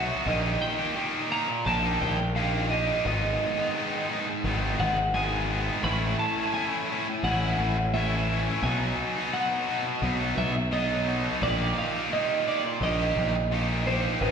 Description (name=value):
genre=post-rock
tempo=86 BPM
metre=4/4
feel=straight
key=unclear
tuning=A4 = 440 Hz
part: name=twelve-string electric guitar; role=melody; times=0.0-14.3 s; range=B4 to B5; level=-29 LUFS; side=right 2 dB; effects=none
part: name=distorted electric guitar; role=riff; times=0.0-14.3 s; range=G#2 to G4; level=-28 LUFS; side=equal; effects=overdrive
part: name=fuzz picked electric bass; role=bass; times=0.0-14.3 s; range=G#1 to B1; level=-29 LUFS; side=equal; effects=overdrive
room=wet recital hall reverb, RT60 1.3 s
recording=recorded in a church or concert hall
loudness=-24 LUFS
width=side -6 dB against mid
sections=0.0-14.3 A section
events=none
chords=0.3 D#/A#; 3.1 G#m; 5.8 A; 8.6 B; 11.4 D#/A#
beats=| 0.27 0.97 1.66 2.36 | 3.06 3.75 4.45 5.15 | 5.85 6.54 7.24 7.94 | 8.64 9.33 10.03 10.73 | 11.43 12.12 12.82 13.52 | 14.21